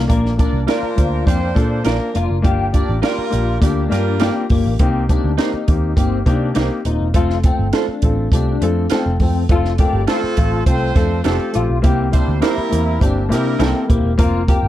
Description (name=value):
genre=uptempo 1960s-style soul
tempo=102 BPM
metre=4/4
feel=straight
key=Bb major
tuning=A4 = 437 Hz
part: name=warm upright piano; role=accompaniment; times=0.0-14.7 s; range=A3 to C5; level=-21 LUFS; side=left 3 dB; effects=none
part: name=electric guitar through a small old amp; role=riff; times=0.0-14.7 s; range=Bb3 to G4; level=-24 LUFS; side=left 5 dB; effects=ensemble chorus
part: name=vintage muted picked electric bass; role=bass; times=0.0-14.7 s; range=Eb1 to C3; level=-19 LUFS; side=right 1 dB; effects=none
part: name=compact cocktail drum kit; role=drums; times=0.1-14.6 s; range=hi-hat, kick drum, snare drum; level=-18 LUFS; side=right 1 dB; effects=none
part: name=clear horn section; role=second line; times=0.4-4.5, 9.8-13.9 s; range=D3 to D5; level=-24 LUFS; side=right 5 dB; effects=none
part: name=electric guitar through a small old amp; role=stabs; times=0.7-13.7 s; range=Eb4 to D5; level=-24 LUFS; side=right 15 dB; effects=wide subtle chorus
room=light reverb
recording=dark, warm production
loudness=-14 LUFS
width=side -13 dB against mid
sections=0.1-14.7 A section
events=none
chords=0.1 Bb; 2.4 Gm7; 4.8 Cm7; 7.1 F; 11.8 C7